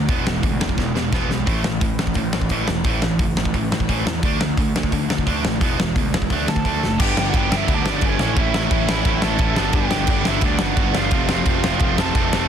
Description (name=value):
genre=punk rock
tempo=174 BPM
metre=4/4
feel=straight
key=unclear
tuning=A4 = 440 Hz
part: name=distorted electric guitar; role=riff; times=0.0-12.5 s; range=E2 to D4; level=-26 LUFS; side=left 10 dB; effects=distortion
part: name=tight distorted guitar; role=riff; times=0.0-12.5 s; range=F2 to G4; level=-24 LUFS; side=right 15 dB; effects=distortion
part: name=fuzz picked electric bass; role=bass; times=0.0-12.5 s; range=E1 to E2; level=-25 LUFS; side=equal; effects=overdrive
part: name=big rock drum kit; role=drums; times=0.1-12.4 s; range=crash cymbal, hi-hat, kick drum, snare drum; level=-21 LUFS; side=equal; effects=none
part: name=biting lead guitar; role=melody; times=6.5-12.5 s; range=C#4 to A5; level=-26 LUFS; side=right 3 dB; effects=overdrive, digital delay
part: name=overdriven electric guitar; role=riff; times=7.0-12.5 s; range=F2 to E4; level=-27 LUFS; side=equal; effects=none
room=little or no reverb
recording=dense, heavily limited modern master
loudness=-17 LUFS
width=side -8 dB against mid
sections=0.0-7.0 A section; 7.0-12.5 B section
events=drum fill 0.8-1.5, 6.8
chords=0.1 E; 1.5 A5; 4.2 D5; 5.6 E; 6.3 D; 7.0 G; 8.2 A; 9.6 G; 11.1 F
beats=| 0.10 0.44 0.79 1.13 | 1.48 1.82 2.17 2.51 | 2.85 3.20 3.54 3.89 | 4.24 4.58 4.92 5.27 | 5.62 5.96 6.31 6.65 | 7.00 7.34 7.68 8.03 | 8.37 8.71 9.06 9.40 | 9.74 10.09 10.43 10.78 | 11.12 11.46 11.81 12.15